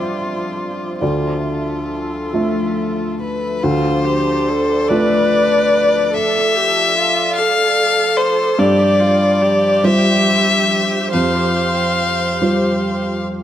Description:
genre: neoclassical piano and strings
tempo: 46-49 BPM (dotted quarters)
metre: 6/8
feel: rubato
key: D dorian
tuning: A4 = 440 Hz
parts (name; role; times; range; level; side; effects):
- rich violin; melody; 0.0-13.2 s; F4 to F5; -17 LUFS; left 3 dB; none
- felt-muted upright piano; accompaniment; 0.0-13.4 s; D2 to G5; -18 LUFS; equal; none
- phased analog pad; sustained chords; 0.0-13.4 s; F3 to E5; -27 LUFS; right 1 dB; phaser, chorus
- warm viola; accompaniment; 3.6-13.0 s; F4 to C5; -20 LUFS; right 4 dB; none
room: moderate scoring stage reverb, RT60 2.0 s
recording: none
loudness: -14 LUFS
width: side -11 dB against mid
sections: 0.0-3.6 A section; 3.6-13.4 A section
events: none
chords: 0.0 G7sus4; 1.0 Dmadd9; 3.6 Dm; 8.6 G7sus4; 11.1 Fsus2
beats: | 1.01 2.33 | 3.63 4.89 | 6.13 7.36 | 8.59 9.83 | 11.12 12.42

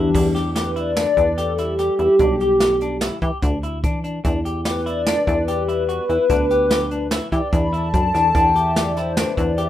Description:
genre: progressive instrumental, band music in an uneven meter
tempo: 146 BPM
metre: 5/4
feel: straight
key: E minor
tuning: A4 = 440 Hz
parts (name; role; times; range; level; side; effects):
- dark analog pad; accompaniment; 0.0-9.7 s; E3 to B5; -18 LUFS; left 1 dB; chorus
- semi-hollow electric guitar; arpeggios; 0.0-9.7 s; D4 to G4; -28 LUFS; left 2 dB; none
- plucky analog bass; bass; 0.0-9.7 s; B1 to E3; -24 LUFS; equal; none
- jazz brush drum kit; drums; 0.1-9.7 s; crash cymbal, hi-hat, kick drum, snare drum; -23 LUFS; equal; none
room: light reverb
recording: rough home demo mix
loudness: -17 LUFS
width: side -12 dB against mid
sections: 0.1-9.7 A section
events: analog synth pad solo 0.1-9.7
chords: 0.1 Em7; 4.2 G/E; 8.3 Em7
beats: | 0.14 0.56 0.97 1.38 1.79 | 2.20 2.61 3.02 3.43 3.84 | 4.25 4.66 5.07 5.48 5.89 | 6.30 6.71 7.12 7.53 7.94 | 8.35 8.76 9.17 9.58

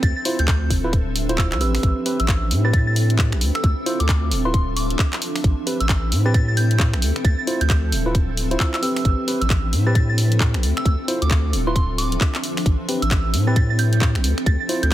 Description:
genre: UK garage, two-step garage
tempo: 133 BPM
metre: 4/4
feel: swing 61% on 16ths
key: unclear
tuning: A4 = 441 Hz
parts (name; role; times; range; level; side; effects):
- soft synth bell; melody; 0.0-14.9 s; C6 to A6; -28 LUFS; right 2 dB; chorus, phaser, dub echo
- soft string machine; sustained chords; 0.0-14.9 s; F3 to E5; -33 LUFS; left 1 dB; ensemble chorus, sidechain pumping
- saturated sub bass; bass; 0.0-14.9 s; D1 to A2; -20 LUFS; equal; none
- electronic kick drum; drums; 0.0-14.9 s; none; -19 LUFS; equal; none
- garage drum kit; drums; 0.0-14.9 s; finger snaps, handclaps, hi-hat; -26 LUFS; equal; none
- granular cloud pad; texture; 0.0-14.9 s; F3 to C6; -29 LUFS; right 1 dB; built-in reverb, sidechain pumping
- tine electric piano; stabs; 0.3-14.8 s; C4 to C5; -26 LUFS; right 1 dB; none
room: digital ambience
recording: dense, heavily limited modern master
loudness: -17 LUFS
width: side -14 dB against mid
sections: 0.0-14.9 A section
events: none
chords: 0.0 Dm9; 1.8 Am9; 3.4 Dm9; 5.4 Am9; 7.0 Dm9; 9.1 Am9; 10.6 Dm9; 12.7 Am9; 14.2 Dm9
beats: | 0.03 0.48 0.93 1.38 | 1.83 2.28 2.73 3.19 | 3.64 4.09 4.54 4.99 | 5.44 5.89 6.34 6.80 | 7.25 7.70 8.15 8.60 | 9.05 9.50 9.95 10.40 | 10.86 11.31 11.76 12.21 | 12.66 13.11 13.56 14.01 | 14.46 14.92

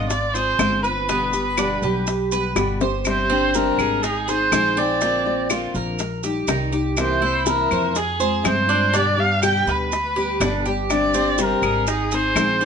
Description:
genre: latin, Cuban son and guajira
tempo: 122 BPM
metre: 4/4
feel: straight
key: unclear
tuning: A4 = 440 Hz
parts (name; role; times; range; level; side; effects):
- dark erhu; melody; 0.0-12.7 s; Ab4 to G5; -21 LUFS; right 1 dB; none
- nylon-string guitar; accompaniment; 0.0-12.7 s; B2 to Ab4; -25 LUFS; left 4 dB; none
- Cuban tres; arpeggios; 0.0-12.7 s; B3 to C5; -25 LUFS; right 4 dB; none
- upright bass; bass; 0.0-12.7 s; G1 to G2; -27 LUFS; equal; none
- bongos; percussion; 0.1-12.6 s; none; -28 LUFS; left 6 dB; none
- maracas; percussion; 0.1-12.7 s; none; -32 LUFS; right 5 dB; none
- claves; percussion; 0.6-12.6 s; none; -30 LUFS; left 3 dB; none
room: moderate studio reverb, RT60 0.9 s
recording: nothing above 10.6 kHz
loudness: -18 LUFS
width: side -6 dB against mid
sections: 0.0-3.1 A section; 3.1-12.7 B section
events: drum fill 2.6-3.1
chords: 0.1 Fm/Ab; 1.1 G; 3.1 Gsus4; 4.0 Ab; 5.0 Bbadd9; 6.0 Eb/Bb; 7.0 C7; 8.0 Fm; 8.9 G; 10.9 Gsus4; 11.9 Ab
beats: 0.11 0.60 | 1.09 1.58 2.07 2.56 | 3.05 3.54 4.04 4.53 | 5.02 5.51 6.00 6.49 | 6.98 7.47 7.96 8.45 | 8.94 9.43 9.92 10.41 | 10.90 11.39 11.88 12.37

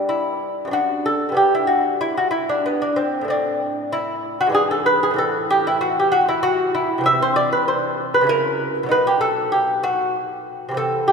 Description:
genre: classical, baroque-style dance for lute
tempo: 96 BPM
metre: 3/4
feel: rubato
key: unclear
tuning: A4 = 439 Hz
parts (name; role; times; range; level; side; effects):
- lute; solo; 0.0-11.1 s; F#2 to E5; -17 LUFS; equal; none
room: wet church reverb, RT60 3.1 s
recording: recorded in a church or concert hall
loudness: -17 LUFS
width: side -5 dB against mid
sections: 0.0-11.1 A section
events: none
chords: 0.0 G; 0.7 D/F#; 1.4 G; 3.3 Am; 4.6 E7/G#; 5.2 Am; 7.0 C; 8.3 F#7/C#; 8.9 B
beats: 0.10 0.74 | 1.38 2.02 2.66 | 3.30 3.94 4.56 | 5.18 5.80 6.43 | 7.05 7.67 8.28 | 8.90 9.52 10.15 | 10.78

